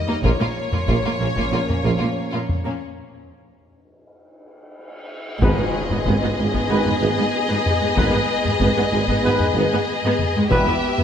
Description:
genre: cinematic, epic orchestral film score.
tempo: 94 BPM.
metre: 4/4.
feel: straight.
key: G# harmonic minor.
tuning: A4 = 438 Hz.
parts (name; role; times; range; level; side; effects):
rich symphonic violin section; melody; 0.0-11.0 s; C#5 to E5; -28 LUFS; left 4 dB; none.
warm French horn section; sustained chords; 0.0-10.7 s; G3 to D#4; -32 LUFS; left 2 dB; none.
warm trombone section; sustained chords; 0.0-10.7 s; G#2 to G3; -32 LUFS; right 3 dB; none.
rich symphonic violin section; second line; 0.1-11.0 s; C#4 to G#4; -27 LUFS; left 4 dB; none.
warm symphonic viola section; accompaniment; 0.1-11.0 s; G#3 to B3; -27 LUFS; right 1 dB; none.
rich studio cello section; bass; 0.1-11.0 s; D#2 to A#2; -26 LUFS; right 2 dB; none.
warm symphonic double bass section; bass; 0.2-10.6 s; E1 to A#1; -28 LUFS; right 3 dB; none.
warm tuba; bass; 0.2-10.6 s; E1 to A#1; -28 LUFS; right 4 dB; none.
taiko ensemble; drums; 0.2-11.0 s; none; -24 LUFS; left 1 dB; none.
cymbal swell and tam-tam; percussion; 2.8-7.9 s; none; -33 LUFS; left 1 dB; none.
warm symphonic string section; sustained chords; 5.4-11.0 s; B3 to E5; -26 LUFS; equal; none.
warm trumpet section; stabs; 5.4-10.7 s; B4; -28 LUFS; equal; none.
impact; sound effects; 5.6-8.0 s; none; -35 LUFS; equal; none.
room: moderate scoring stage reverb, RT60 2.2 s.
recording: none.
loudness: -17 LUFS.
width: side -8 dB against mid.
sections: 0.0-5.4 A section; 5.4-11.0 A section.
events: break 2.8-5.4; drum fill 4.8-5.4; band accent 5.4-6.1; impact 5.4-8.0.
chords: 0.2 A#m; 5.4 G#m; 10.5 Em.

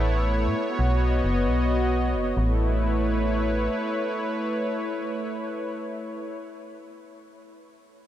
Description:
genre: IDM.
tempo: free time.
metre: none.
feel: none.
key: A lydian.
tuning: A4 = 440 Hz.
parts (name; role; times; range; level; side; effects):
warm analog pad; sustained chords; 0.0-6.4 s; A3 to D#5; -26 LUFS; equal; chorus.
metallic FM bass; bass; 0.0-3.7 s; F#1 to A2; -24 LUFS; equal; none.
bubbling stepped-filter texture; texture; 0.0-2.4 s; B3 to B4; -36 LUFS; right 1 dB; chorus, built-in reverb.
room: moderate huge ambient reverb, RT60 7.4 s.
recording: none.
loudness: -23 LUFS.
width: side -12 dB against mid.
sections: 0.0-2.4 A section; 2.4-6.0 B section.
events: filter sweep on FM bass 0.0-2.4.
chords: 0.0 A; 0.6 B; 2.4 A.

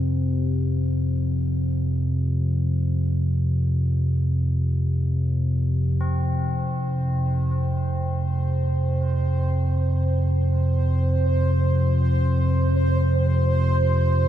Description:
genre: dark ambient drone.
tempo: free time.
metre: none.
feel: none.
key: unclear.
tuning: A4 = 440 Hz.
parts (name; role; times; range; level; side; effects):
deep rumbling drone; drone; 0.0-14.3 s; F2 to C3; -20 LUFS; equal; built-in reverb.
tubular bells; arpeggios; 6.0-14.3 s; C4; -37 LUFS; left 3 dB; ping-pong delay.
bubbling stepped-filter texture; texture; 6.8-14.3 s; C5; -29 LUFS; right 1 dB; chorus, built-in reverb.
room: moderate huge ambient reverb, RT60 7.8 s.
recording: none.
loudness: -20 LUFS.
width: side -11 dB against mid.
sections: 0.0-6.0 A section; 6.0-14.3 B section.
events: fade-in on synth texture 6.0-14.3; fade-in on tubular bells 6.0-14.3.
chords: 0.0 F5.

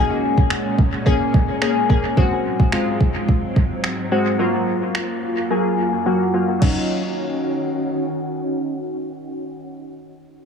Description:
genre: dance-pop.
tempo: 108 BPM.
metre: 4/4.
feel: straight.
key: Eb dorian.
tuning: A4 = 440 Hz.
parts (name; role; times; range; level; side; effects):
glassy wavetable pluck; accompaniment; 0.0-9.9 s; Gb3 to Ab4; -20 LUFS; left 2 dB; chorus, low-pass filter, dub echo.
soft string machine; sustained chords; 0.0-9.6 s; Gb2 to Gb4; -25 LUFS; equal; ensemble chorus, sidechain pumping, low-pass filter.
smooth R&B drum kit; drums; 0.4-6.8 s; crash cymbal, finger snaps, kick drum; -19 LUFS; right 1 dB; dub echo.
room: moderate spring reverb, RT60 2.3 s.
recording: echo-heavy mix, studio ambience.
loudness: -17 LUFS.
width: side -6 dB against mid.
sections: 0.0-6.6 A section; 6.6-8.8 B section.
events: filter sweep 0.0-6.6; silent gap 6.1-6.6.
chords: 0.0 Bbm7; 2.2 Ab7; 4.4 Gbmaj7; 6.6 Ebm7.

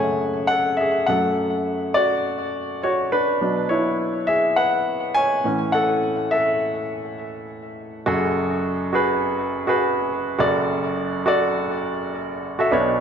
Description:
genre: pop.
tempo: 103 BPM.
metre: 4/4.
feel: swing 56% on 16ths.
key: unclear.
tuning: A4 = 438 Hz.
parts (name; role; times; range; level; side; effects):
warm grand piano; solo; 0.0-13.0 s; F#1 to G#5; -19 LUFS; equal; tape echo.
room: wet recital hall reverb, RT60 1.7 s.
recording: none.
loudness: -19 LUFS.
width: side -7 dB against mid.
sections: 0.0-8.1 A section; 8.1-13.0 B section.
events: grand piano solo 0.0-8.1.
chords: 0.0 F#madd9; 1.1 D/F#; 3.4 Bmadd9; 5.5 A; 8.1 F#madd9; 10.4 D/F#.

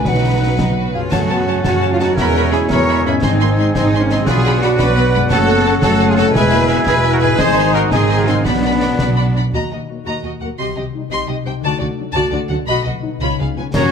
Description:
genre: cinematic, heroic adventure film score.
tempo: 114 BPM (dotted quarters).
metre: 6/8.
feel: straight.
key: unclear.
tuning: A4 = 440 Hz.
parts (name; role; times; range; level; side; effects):
rich symphonic violin section; melody; 0.0-13.8 s; B4 to C6; -25 LUFS; equal; none.
mellow hollow silver concert flute; second line; 0.0-9.4, 13.7-13.9 s; Db5 to Db6; -25 LUFS; left 2 dB; none.
rich symphonic violin section; second line; 0.0-13.9 s; D#4 to G#5; -27 LUFS; left 2 dB; none.
rich symphonic viola section; accompaniment; 0.0-13.8 s; F#3 to Bb4; -22 LUFS; left 2 dB; none.
concert harp; arpeggios; 0.0-13.9 s; E2 to C5; -25 LUFS; left 11 dB; none.
rich symphonic cello section; bass; 0.0-13.8 s; Eb2 to Db5; -20 LUFS; right 1 dB; none.
warm symphonic double bass section; bass; 0.0-13.8 s; E1 to Gb2; -20 LUFS; right 3 dB; none.
concert snare drum, concert bass drum and clash cymbals; drums; 0.1-9.2, 13.7-13.9 s; none; -22 LUFS; equal; none.
mellow trumpet; stabs; 0.9-9.3, 13.7-13.9 s; Bb3 to Db5; -23 LUFS; right 2 dB; none.
clear clarinet; second line; 1.1-9.3, 13.8-13.9 s; Gb4 to Gb5; -27 LUFS; left 3 dB; none.
clear oboe; second line; 1.1-9.3 s; F#5 to B5; -26 LUFS; right 3 dB; none.
mellow French horn section; sustained chords; 1.1-13.9 s; F3 to Gb4; -25 LUFS; left 4 dB; none.
warm trombone section; sustained chords; 1.1-9.3, 13.7-13.9 s; F#2 to Bb3; -25 LUFS; right 5 dB; none.
room: light reverb.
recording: close, detailed microphones.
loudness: -13 LUFS.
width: side -7 dB against mid.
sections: 0.0-1.1 A section; 1.1-9.5 B section; 9.5-13.7 C section.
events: none.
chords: 0.0 B; 1.1 Gbm; 2.2 E; 3.2 Ab; 4.3 Bm; 5.3 Gbm; 6.4 E; 7.4 Ab; 8.5 Bm; 9.5 Ebm; 10.6 Cm; 11.6 D; 12.7 B; 13.2 Db7.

